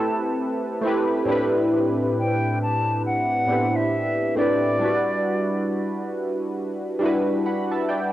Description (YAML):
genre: hip hop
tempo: 68 BPM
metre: 4/4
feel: swing 57% on 16ths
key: A dorian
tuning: A4 = 440 Hz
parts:
  - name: hollow concert flute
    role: melody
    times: 0.0-6.1 s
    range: D5 to A5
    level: -25 LUFS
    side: equal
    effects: low-pass filter, cassette tape
  - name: warm analog keys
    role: accompaniment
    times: 0.0-8.1 s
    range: A2 to B5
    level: -22 LUFS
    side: equal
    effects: chorus, phaser, cassette tape, low-pass filter
room: moderate small room reverb, RT60 0.5 s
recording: home recording on cassette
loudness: -20 LUFS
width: side -14 dB against mid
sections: 0.0-1.3 A section; 1.3-8.1 A section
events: none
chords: 0.0 Am9; 1.3 Am11; 4.8 Em7